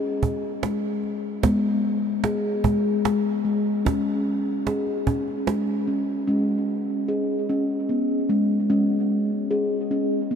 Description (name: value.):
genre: world meditative, meditative tuned percussion.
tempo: 50 BPM (dotted quarters).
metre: 6/8.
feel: straight.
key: unclear.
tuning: A4 = 440 Hz.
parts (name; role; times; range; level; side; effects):
steel tongue drum; arpeggios; 0.0-10.4 s; G#3 to G#4; -22 LUFS; left 1 dB; tape echo.
cajon; percussion; 0.2-5.8 s; none; -30 LUFS; right 5 dB; none.
room: wet huge ambient reverb, RT60 8.7 s.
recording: in a vast, echoing space.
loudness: -21 LUFS.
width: side -7 dB against mid.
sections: 0.0-6.3 A section; 6.3-10.4 B section.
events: none.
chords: 0.0 N.C.; 1.4 G#m; 3.9 C#5.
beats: 0.22 | 1.43 2.65 | 3.86 5.07 | 6.28 7.49 | 8.70 9.91.